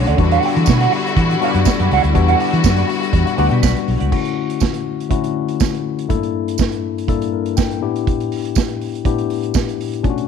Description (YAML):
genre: disco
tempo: 122 BPM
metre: 4/4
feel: straight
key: D major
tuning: A4 = 440 Hz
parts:
  - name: tine electric piano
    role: accompaniment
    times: 0.0-10.3 s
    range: G2 to G5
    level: -20 LUFS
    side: left 11 dB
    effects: none
  - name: clear studio string section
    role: sustained chords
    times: 0.0-4.1 s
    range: D3 to C#5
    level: -22 LUFS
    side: left 2 dB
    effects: none
  - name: fingered electric bass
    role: bass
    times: 0.0-4.1 s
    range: B1 to E3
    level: -16 LUFS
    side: equal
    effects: none
  - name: semi-hollow electric guitar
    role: accompaniment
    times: 0.1-4.1 s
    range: G4 to G5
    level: -20 LUFS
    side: right 15 dB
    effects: wah
  - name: vintage drum kit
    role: drums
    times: 0.1-10.3 s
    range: crash cymbal, hi-hat, kick drum, snare drum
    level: -20 LUFS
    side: right 3 dB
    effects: none
  - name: tambourine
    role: percussion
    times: 0.7-9.7 s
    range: none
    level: -29 LUFS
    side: right 15 dB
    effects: none
room: light reverb, small room ambience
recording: 1960s-style stereo with parts hard left and right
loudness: -15 LUFS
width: side -7 dB against mid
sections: 0.0-4.1 A section; 4.1-10.3 B section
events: tine electric piano fill 7.1-8.1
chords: 0.2 Em9; 4.1 Dmaj9; 6.1 Gm6; 7.8 A9sus4